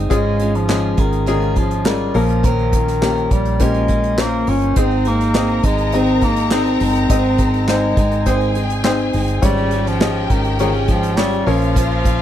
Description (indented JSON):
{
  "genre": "piano-driven pop",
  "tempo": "103 BPM",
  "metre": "4/4",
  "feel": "straight",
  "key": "unclear",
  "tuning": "A4 = 435 Hz",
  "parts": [
    { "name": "warm upright piano", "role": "accompaniment", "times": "0.0-12.2 s", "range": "Ab2 to Eb5", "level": "-22 LUFS", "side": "left 5 dB", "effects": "none" },
    { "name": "picked steel-string acoustic guitar", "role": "riff", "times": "0.0-12.2 s", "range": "Ab2 to Bb4", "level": "-24 LUFS", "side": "right 8 dB", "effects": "none" },
    { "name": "vintage muted fingered electric bass", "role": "bass", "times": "0.0-12.2 s", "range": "G1 to Bb1", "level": "-21 LUFS", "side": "equal", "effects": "none" },
    { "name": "clear bass clarinet", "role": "melody", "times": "0.1-12.2 s", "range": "Eb3 to Db4", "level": "-20 LUFS", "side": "equal", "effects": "slapback echo" },
    { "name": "unplugged drum kit", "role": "drums", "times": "0.1-12.2 s", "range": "handclaps, hi-hat, kick drum, snare drum", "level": "-20 LUFS", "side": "right 1 dB", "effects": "none" },
    { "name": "warm studio violin section", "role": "second line", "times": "4.8-12.2 s", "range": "F4 to Bb5", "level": "-25 LUFS", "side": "left 4 dB", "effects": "none" }
  ],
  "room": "small room reverb",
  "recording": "dry, close 1970s-style studio recording",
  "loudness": "-14 LUFS",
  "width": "side -11 dB against mid",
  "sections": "0.0-12.2 A section",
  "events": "none",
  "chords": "0.1 Db/Ab; 2.1 Bbm; 4.8 Ab; 9.4 Db/Ab; 11.5 Bbm"
}